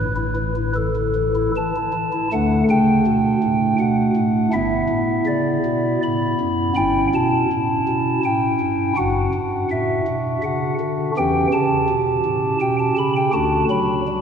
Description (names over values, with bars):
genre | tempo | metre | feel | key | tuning
classical, chorale-style piece for pipe organ | 82 BPM | 3/4 | straight | D major | A4 = 440 Hz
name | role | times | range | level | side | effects
chamber organ, stopped flute | solo | 0.0-14.2 s | F#1 to B5 | -17 LUFS | equal | none
room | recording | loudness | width
wet cathedral reverb, RT60 4.7 s | recorded in a church or concert hall | -17 LUFS | side -7 dB against mid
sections
0.0-2.3 A section; 2.3-14.2 B section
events
none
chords
0.0 A5; 2.3 D; 4.5 Em/G; 6.8 A7/G; 9.0 D/F#; 11.2 A7/E; 13.3 D